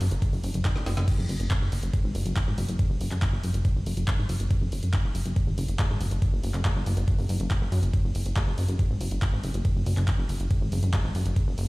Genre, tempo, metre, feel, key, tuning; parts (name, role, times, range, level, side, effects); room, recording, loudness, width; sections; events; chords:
psychedelic trance; 140 BPM; 4/4; straight; A4 = 441 Hz
plucky analog bass; bass; 0.0-11.7 s; F#1 to F#2; -26 LUFS; equal
drum and bass drum kit; drums; 0.0-11.7 s; crash cymbal, handclaps, hi-hat, ride cymbal, snare drum; -36 LUFS; equal; overdrive
electronic kick drum; drums; 0.2-11.4 s; -24 LUFS; equal; overdrive
little or no reverb; played on a big sound system in a bare room, stone room reverb; -24 LUFS; side -23 dB against mid
0.0-11.7 A section
drum fill 0.6-1.1